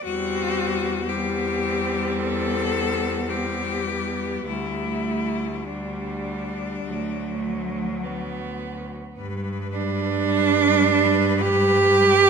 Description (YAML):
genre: classical, lyrical piece for cello ensemble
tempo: 49-57 BPM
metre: 4/4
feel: rubato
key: G major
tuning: A4 = 441 Hz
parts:
  - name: clear cello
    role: melody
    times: 0.0-12.3 s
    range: D4 to B4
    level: -29 LUFS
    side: left 7 dB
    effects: none
  - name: clear cello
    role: second line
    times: 0.0-12.3 s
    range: G3 to G4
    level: -23 LUFS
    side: right 5 dB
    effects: none
  - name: clear cello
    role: accompaniment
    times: 0.0-12.3 s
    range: F#3 to G3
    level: -29 LUFS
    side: left 5 dB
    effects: none
  - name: clear cello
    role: bass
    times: 0.0-12.3 s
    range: D2 to G2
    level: -29 LUFS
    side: right 1 dB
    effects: none
room: wet large studio reverb, RT60 1.5 s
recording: minimal, uncompressed stereo recording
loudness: -21 LUFS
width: side -6 dB against mid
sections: 0.0-9.2 A section; 9.2-12.3 B section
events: none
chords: 0.0 C/E; 4.5 Dsus4; 6.9 D; 9.2 G